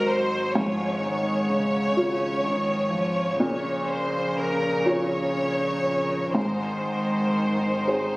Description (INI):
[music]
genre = neoclassical piano and strings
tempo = 39-43 BPM (dotted quarters)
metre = 6/8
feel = rubato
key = Bb minor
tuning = A4 = 440 Hz
[part]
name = muted chamber violin section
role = melody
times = 0.0-8.2 s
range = Bb4 to Db5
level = -26 LUFS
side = equal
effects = none
[part]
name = muted cello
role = second line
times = 0.0-8.2 s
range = Db3 to Gb3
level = -30 LUFS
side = right 1 dB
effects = none
[part]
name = warm upright piano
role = accompaniment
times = 0.0-8.2 s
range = Ab2 to Db5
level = -26 LUFS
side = equal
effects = none
[part]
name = muted chamber string section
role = sustained chords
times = 0.0-8.2 s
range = F3 to Eb5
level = -36 LUFS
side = equal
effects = none
[part]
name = punchy sub bass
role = bass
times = 0.0-8.2 s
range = Ab1 to Bb1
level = -38 LUFS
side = equal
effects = none
[sound]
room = moderate recital hall reverb, RT60 1.7 s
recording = recorded on a phone in the room, studio reverb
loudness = -22 LUFS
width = side -22 dB against mid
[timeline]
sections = 0.0-8.2 A section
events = none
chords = 0.0 Ab7; 0.6 Db/Ab; 3.4 Bbm; 6.4 Ab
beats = | 0.55 1.96 | 3.40 4.86 | 6.35 7.88